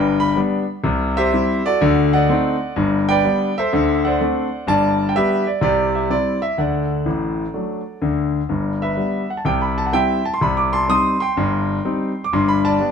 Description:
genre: jazz, stride piano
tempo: 126 BPM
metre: 4/4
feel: swing 65% on 8ths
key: G major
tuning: A4 = 440 Hz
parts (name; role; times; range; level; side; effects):
- clear concert grand piano; solo; 0.0-12.9 s; G1 to Eb6; -16 LUFS; equal; none
room: moderate stone room reverb, RT60 1.1 s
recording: band playing live in one room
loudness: -16 LUFS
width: side -6 dB against mid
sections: 0.0-8.5 A section; 8.5-12.9 B section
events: none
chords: 0.0 G; 0.8 C; 1.8 D7b9; 2.8 G; 3.7 D7; 4.7 G; 5.6 C; 6.6 D; 8.5 G; 9.4 C; 10.4 Cm; 12.3 G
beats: 0.37 | 0.84 1.32 1.80 2.28 | 2.75 3.23 3.71 4.19 | 4.67 5.14 5.62 6.10 | 6.58 7.05 7.53 8.01 | 8.49 8.97 9.44 9.92 | 10.40 10.88 11.36 11.83 | 12.31 12.79

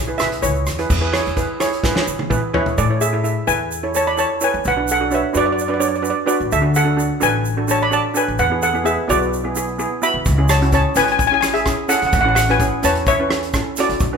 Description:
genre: calypso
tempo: 128 BPM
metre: 4/4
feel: straight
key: A major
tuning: A4 = 440 Hz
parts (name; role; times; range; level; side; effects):
- upright bass; bass; 0.0-14.2 s; G#1 to E3; -22 LUFS; left 1 dB; none
- steel pan; accompaniment; 0.1-14.2 s; B3 to E5; -22 LUFS; right 3 dB; none
- egg shaker; percussion; 0.1-14.1 s; none; -29 LUFS; right 5 dB; none
- steel pan; melody; 0.2-14.2 s; E4 to B5; -18 LUFS; equal; none
- loose indie drum kit; drums; 0.2-2.8, 10.3-14.1 s; crash cymbal, hi-hat, kick drum, rim click, snare drum, toms; -22 LUFS; equal; none
room: moderate recital hall reverb, RT60 1.5 s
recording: minimal, uncompressed stereo recording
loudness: -15 LUFS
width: side -6 dB against mid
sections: 0.9-2.8 A section; 2.8-14.2 B section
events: drum fill 1.8-2.8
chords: 0.0 E6; 2.8 A; 4.6 Bm; 8.4 E; 10.3 C#m; 12.1 A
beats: 0.43 | 0.90 1.37 1.84 2.31 | 2.77 3.24 3.71 4.18 | 4.65 5.11 5.58 6.05 | 6.52 6.98 7.45 7.92 | 8.39 8.86 9.32 9.79 | 10.26 10.73 11.20 11.66 | 12.13 12.60 13.07 13.54 | 14.01

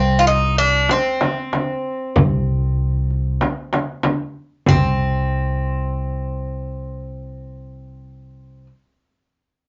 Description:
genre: Turkish makam ensemble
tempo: 95 BPM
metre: 4/4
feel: straight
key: unclear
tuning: A4 = 440 Hz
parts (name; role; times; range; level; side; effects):
- Greek bouzouki; melody; 0.0-8.7 s; C4 to F4; -23 LUFS; equal; none
- upright bass; bass; 0.0-8.7 s; C2; -24 LUFS; equal; none
- darbuka; percussion; 0.3-5.0 s; none; -27 LUFS; equal; none
- frame drum; percussion; 0.9-5.0 s; none; -22 LUFS; equal; none
room: wet club reverb, RT60 0.5 s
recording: nothing above 7.5 kHz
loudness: -20 LUFS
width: mono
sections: 0.0-4.7 A section; 4.7-7.2 B section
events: none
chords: none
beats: 0.27 0.90 1.52 | 2.15 2.79 3.42 4.05 | 4.68 5.31 5.94 6.57

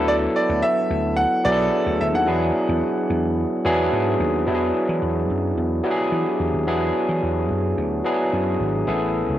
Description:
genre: polished 1980s jazz-funk pop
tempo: 109 BPM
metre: 4/4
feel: straight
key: unclear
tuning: A4 = 442 Hz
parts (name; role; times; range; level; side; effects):
- overdriven tine electric piano; accompaniment; 0.0-9.4 s; F#3 to A4; -21 LUFS; equal; wide subtle chorus, cassette tape
- vintage slap bass; bass; 0.0-9.4 s; G#1 to E3; -25 LUFS; equal; none
- bright grand piano; melody; 0.1-3.9 s; D5 to F#5; -23 LUFS; right 1 dB; cassette tape
room: light reverb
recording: home recording on cassette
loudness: -19 LUFS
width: side -12 dB against mid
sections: 0.0-4.5 A section; 4.5-8.9 B section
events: none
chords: 0.0 D69; 2.3 E9; 8.9 Amaj9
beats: | 0.08 0.63 1.18 1.73 | 2.28 2.83 3.38 3.92 | 4.47 5.02 5.57 6.12 | 6.67 7.22 7.77 8.32 | 8.87

